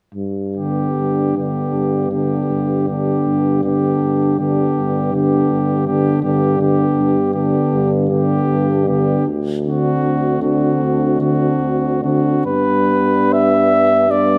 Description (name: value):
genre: classical, hymn-like piece for brass band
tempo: 66-83 BPM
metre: 4/4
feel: rubato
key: G major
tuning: A4 = 441 Hz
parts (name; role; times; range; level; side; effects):
- clear tuba; bass; 0.1-14.4 s; D2 to G2; -23 LUFS; equal; none
- clear flugelhorn; melody; 0.6-14.4 s; F#4 to E5; -23 LUFS; equal; none
- dark French horn section; second line; 0.6-14.4 s; D4; -24 LUFS; equal; none
- warm euphonium; accompaniment; 0.6-14.4 s; B3 to C4; -25 LUFS; equal; none
- warm trombone; accompaniment; 0.6-14.4 s; D3 to G3; -24 LUFS; equal; none
room: light reverb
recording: close, detailed microphones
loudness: -17 LUFS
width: mono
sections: 0.2-12.5 A section; 12.5-14.4 B section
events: none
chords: 0.2 G; 9.3 D7; 12.5 G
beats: | 0.16 0.98 1.74 2.50 | 3.27 4.02 4.77 5.51 | 6.24 6.97 7.73 8.48 | 9.26 10.02 10.79 11.60 | 12.46 13.33 14.11